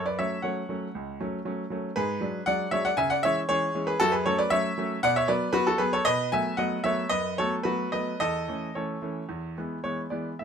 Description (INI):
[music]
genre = classical-period piano sonatina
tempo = 107-119 BPM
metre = 4/4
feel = rubato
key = unclear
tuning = A4 = 440 Hz
[part]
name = clear baby grand piano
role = solo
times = 0.0-10.4 s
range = C#2 to G#5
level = -25 LUFS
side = equal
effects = none
[sound]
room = light reverb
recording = close, detailed microphones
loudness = -25 LUFS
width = side -7 dB against mid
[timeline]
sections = 0.0-10.4 A section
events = none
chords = 0.0 F#m; 1.9 G#m7b5; 3.0 C#m; 4.0 F#m7; 5.0 Bm; 6.1 B7; 8.2 A/E; 9.3 E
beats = 0.42 0.93 1.44 | 1.95 2.46 2.97 3.48 | 4.00 4.51 5.03 5.54 | 6.05 6.58 7.11 7.64 | 8.19 8.75 9.30 9.84 | 10.39